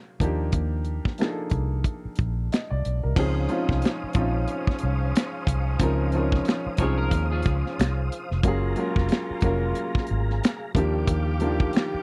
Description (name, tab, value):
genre	R&B, neo-soul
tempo	91 BPM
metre	4/4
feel	swing 57% on 16ths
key	Db major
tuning	A4 = 440 Hz
part	warm upright piano	accompaniment	0.0-12.0 s	Eb3 to Eb5	-31 LUFS	equal	none
part	vintage muted fingered electric bass	bass	0.2-12.0 s	F1 to Eb2	-28 LUFS	equal	none
part	tight funk drum kit	drums	0.2-11.9 s	crash cymbal, finger snaps, hi-hat, kick drum, snare drum	-26 LUFS	equal	none
part	tonewheel organ	sustained chords	3.2-12.0 s	G4 to Eb6	-39 LUFS	equal	slow rotary speaker, chorus vibrato
part	warm horn section	stabs	3.2-12.0 s	Ab2 to G4	-36 LUFS	equal	none
part	electric guitar at the edge of break-up	second line	6.8-8.3 s	F4 to Db5	-36 LUFS	equal	analog chorus, tape echo
room	little or no reverb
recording	dry, close 1970s-style studio recording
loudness	-25 LUFS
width	mono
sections	0.0-3.2 A section; 3.2-12.0 B section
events	none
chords	0.2 Ebmaj9; 3.2 Dbmaj9; 8.4 Gbmaj9; 10.8 Ebmaj9